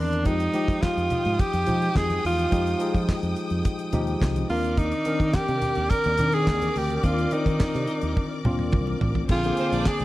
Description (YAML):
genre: disco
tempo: 106 BPM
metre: 4/4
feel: straight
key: F dorian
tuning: A4 = 440 Hz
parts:
  - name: breathy alto saxophone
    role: melody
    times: 0.0-10.0 s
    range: D4 to Bb4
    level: -26 LUFS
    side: right 1 dB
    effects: none
  - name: mellow tine electric piano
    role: accompaniment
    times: 0.0-10.0 s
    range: D3 to D5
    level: -29 LUFS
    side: left 2 dB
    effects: medium stereo tremolo
  - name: clear studio string section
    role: sustained chords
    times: 0.0-10.0 s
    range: Ab3 to Eb6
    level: -35 LUFS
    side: left 1 dB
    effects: none
  - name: fingered electric bass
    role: bass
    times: 0.0-10.0 s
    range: A1 to F3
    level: -27 LUFS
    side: equal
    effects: none
  - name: damped 70s drum kit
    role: drums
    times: 0.1-10.0 s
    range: crash cymbal, handclaps, hi-hat, kick drum, snare drum, toms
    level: -25 LUFS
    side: equal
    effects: none
  - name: congas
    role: percussion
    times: 0.3-10.0 s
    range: none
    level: -34 LUFS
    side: left 1 dB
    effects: none
  - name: bright symphonic violin section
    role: second line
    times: 9.6-10.0 s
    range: C4 to D5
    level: -30 LUFS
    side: right 2 dB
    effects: none
room: little or no reverb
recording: none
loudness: -21 LUFS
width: side -16 dB against mid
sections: 0.0-9.3 A section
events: drum fill 8.2-9.3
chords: 0.3 Fm9; 4.5 Cm9; 9.3 Bb9